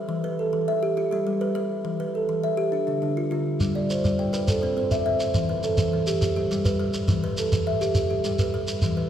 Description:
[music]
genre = southern african traditional, mbira-style interlocking cycle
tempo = 137 BPM (dotted quarters)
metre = 12/8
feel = straight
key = G mixolydian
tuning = A4 = 440 Hz
[part]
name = kalimba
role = arpeggios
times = 0.0-9.1 s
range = D3 to G5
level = -26 LUFS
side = left 2 dB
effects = none
[part]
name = kalimba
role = arpeggios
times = 0.0-9.1 s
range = D3 to E5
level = -27 LUFS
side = right 4 dB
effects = none
[part]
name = shekere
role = percussion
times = 3.6-9.0 s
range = none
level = -26 LUFS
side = right 1 dB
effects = none
[sound]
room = wet church reverb, RT60 3.6 s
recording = recorded in a church or concert hall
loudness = -22 LUFS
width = side -10 dB against mid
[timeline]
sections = 0.0-9.1 A section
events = none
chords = 0.1 Em; 1.0 G; 1.9 Em; 2.7 Dm; 3.6 G; 4.5 C; 5.3 Em; 6.2 G; 7.1 Em; 8.0 G

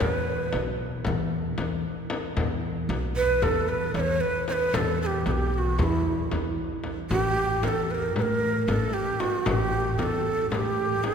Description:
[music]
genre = Turkish makam ensemble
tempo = 228 BPM (eighths)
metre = 9/8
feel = straight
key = E makam huseyni, A makam hicaz from 7.1 s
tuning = A4 = 440 Hz
[part]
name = breathy ney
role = melody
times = 0.0-11.1 s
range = E4 to D5-33c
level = -26 LUFS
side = right 2 dB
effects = none
[part]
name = upright bass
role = bass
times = 0.0-11.1 s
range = A1 to A2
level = -28 LUFS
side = equal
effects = none
[part]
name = frame drum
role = percussion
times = 0.0-11.1 s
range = none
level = -31 LUFS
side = left 3 dB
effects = none
[sound]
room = wet church reverb, RT60 3.0 s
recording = recorded in a church or concert hall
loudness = -24 LUFS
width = side -7 dB against mid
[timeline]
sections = 0.0-7.1 A section; 7.1-11.1 B section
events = none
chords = none

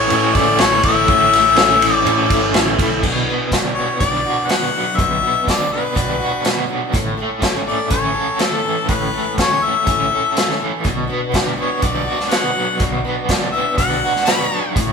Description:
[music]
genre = folk rock and heartland rock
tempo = 123 BPM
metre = 4/4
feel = straight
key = unclear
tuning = A4 = 441 Hz
[part]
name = bright harmonica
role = melody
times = 0.0-14.7 s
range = A4 to B5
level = -18 LUFS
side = left 4 dB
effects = none
[part]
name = picked steel-string acoustic guitar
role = accompaniment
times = 0.0-14.9 s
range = A2 to A4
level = -26 LUFS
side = left 4 dB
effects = none
[part]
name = tonewheel organ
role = sustained chords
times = 0.0-3.0 s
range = C#5 to E6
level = -29 LUFS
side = equal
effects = none
[part]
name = overdriven electric guitar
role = riff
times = 0.0-14.9 s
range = A2 to A4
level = -20 LUFS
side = right 2 dB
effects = tremolo
[part]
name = picked electric bass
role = bass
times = 0.0-14.9 s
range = G1 to A2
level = -28 LUFS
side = equal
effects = none
[part]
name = bright grand piano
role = accompaniment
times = 0.1-2.9 s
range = C#4 to C#5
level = -26 LUFS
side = right 3 dB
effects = none
[part]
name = vintage drum kit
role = drums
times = 0.1-14.9 s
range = crash cymbal, hi-hat, kick drum, ride cymbal, snare drum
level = -19 LUFS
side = right 1 dB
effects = none
[sound]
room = moderate large studio reverb, RT60 1.3 s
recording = band playing live in one room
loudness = -14 LUFS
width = side -6 dB against mid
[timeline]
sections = 0.0-3.0 A section; 3.0-14.9 B section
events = none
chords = 0.0 A; 3.0 Bm; 6.9 A; 10.8 Bm

